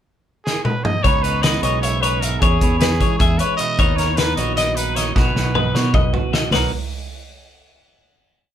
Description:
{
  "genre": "math rock and midwest emo",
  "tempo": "306 BPM (eighths)",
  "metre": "7/8",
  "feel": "straight",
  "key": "B major",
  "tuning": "A4 = 440 Hz",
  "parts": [
    { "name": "growling trumpet", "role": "melody", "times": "0.4-6.1 s", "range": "G#4 to D#5", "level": "-24 LUFS", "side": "right 2 dB", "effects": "none" },
    { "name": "loose indie drum kit", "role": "drums", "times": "0.5-6.6 s", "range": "hi-hat, kick drum, snare drum, toms", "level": "-20 LUFS", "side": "equal", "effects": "none" },
    { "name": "twelve-string electric guitar", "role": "accompaniment", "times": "1.0-6.7 s", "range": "G#2 to B4", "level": "-25 LUFS", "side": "right 8 dB", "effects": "none" },
    { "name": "twelve-string electric guitar", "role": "arpeggios", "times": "1.0-6.7 s", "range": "B4 to E5", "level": "-22 LUFS", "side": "left 6 dB", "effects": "none" },
    { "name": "fingered electric bass", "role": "bass", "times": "1.0-6.7 s", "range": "A#1 to E3", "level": "-22 LUFS", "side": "equal", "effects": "none" }
  ],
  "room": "moderate studio reverb, RT60 0.5 s",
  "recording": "band playing live in one room",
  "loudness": "-16 LUFS",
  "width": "side -10 dB against mid",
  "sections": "0.0-1.0 pickup bar; 1.0-6.5 A section; 6.5-7.9 final chord",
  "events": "drum fill 0.5-1.0, 5.2-6.5",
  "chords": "0.0 N.C.; 1.0 C#m9; 2.4 E6; 3.8 Bmaj7; 5.2 B"
}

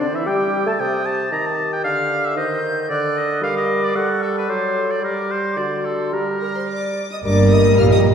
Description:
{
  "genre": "quick classical-period movement for symphony orchestra",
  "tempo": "113 BPM",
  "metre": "2/4",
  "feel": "rubato",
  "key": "G minor",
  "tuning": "A4 = 441 Hz",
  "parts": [
    { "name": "bright concert flute", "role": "second line", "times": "0.0-8.1 s", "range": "Bb4 to G6", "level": "-28 LUFS", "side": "left 2 dB", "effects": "none" },
    { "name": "clear oboe", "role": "second line", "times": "0.0-8.1 s", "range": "A4 to Bb5", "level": "-24 LUFS", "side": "right 1 dB", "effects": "none" },
    { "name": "warm clarinet", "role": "second line", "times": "0.0-8.1 s", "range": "E4 to C5", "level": "-24 LUFS", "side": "equal", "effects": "none" },
    { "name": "warm bassoon", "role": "accompaniment", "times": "0.0-8.1 s", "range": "C3 to A3", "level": "-24 LUFS", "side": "right 1 dB", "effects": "none" },
    { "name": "rich studio violin section", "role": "melody", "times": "6.4-8.0 s", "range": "Bb5 to F6", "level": "-29 LUFS", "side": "left 2 dB", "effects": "none" },
    { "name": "rich studio violin section", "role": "second line", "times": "7.2-8.1 s", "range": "D4 to Bb4", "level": "-24 LUFS", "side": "right 1 dB", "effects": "none" },
    { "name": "rich studio viola section", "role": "accompaniment", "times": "7.2-8.1 s", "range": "G3 to Bb3", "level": "-20 LUFS", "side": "equal", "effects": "none" },
    { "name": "dark French horn section", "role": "sustained chords", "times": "7.2-8.1 s", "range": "G4 to Bb4", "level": "-17 LUFS", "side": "left 3 dB", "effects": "none" },
    { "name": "clear studio double bass section", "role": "bass", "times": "7.2-8.1 s", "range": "G1 to Bb1", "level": "-18 LUFS", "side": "right 2 dB", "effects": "none" },
    { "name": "rich studio cello section", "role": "bass", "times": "7.2-8.1 s", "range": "G2 to Bb2", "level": "-17 LUFS", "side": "right 1 dB", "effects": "none" }
  ],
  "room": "wet concert hall reverb, RT60 2.2 s",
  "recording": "heard from further back in the room",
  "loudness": "-17 LUFS",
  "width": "side -7 dB against mid",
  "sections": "0.0-7.2 A section",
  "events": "none",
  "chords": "0.0 N.C.; 0.8 Cm; 1.9 Dmadd11; 2.4 Cm/Eb; 2.9 D; 3.4 Gm; 4.5 D7/F#; 5.0 Gm; 5.6 D7; 6.1 Gm"
}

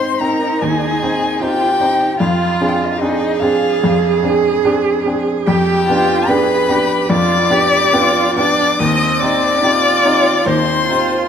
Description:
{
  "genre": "classical, slow romantic movement for piano quartet",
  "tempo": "73 BPM",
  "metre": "4/4",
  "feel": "rubato",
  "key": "C minor",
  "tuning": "A4 = 441 Hz",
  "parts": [
    { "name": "rich violin", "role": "melody", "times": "0.0-11.3 s", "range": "Eb5 to Eb6", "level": "-18 LUFS", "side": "left 5 dB", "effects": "none" },
    { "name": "dark violin", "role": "second line", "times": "0.0-11.3 s", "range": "Eb4 to Eb5", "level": "-18 LUFS", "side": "left 2 dB", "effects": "none" },
    { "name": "rich cello", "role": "second line", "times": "0.0-11.3 s", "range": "C4 to Ab4", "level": "-18 LUFS", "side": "right 7 dB", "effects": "none" },
    { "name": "warm baby grand piano", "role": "accompaniment", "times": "0.0-11.3 s", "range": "Eb2 to C5", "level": "-18 LUFS", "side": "equal", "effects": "none" }
  ],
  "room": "moderate concert hall reverb, RT60 1.9 s",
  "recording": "none",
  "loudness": "-12 LUFS",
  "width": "side -8 dB against mid",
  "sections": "0.0-11.3 A section",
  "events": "none",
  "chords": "0.0 Ab; 2.2 Dm7b5/F; 5.5 G7/F; 8.8 Cm/Eb"
}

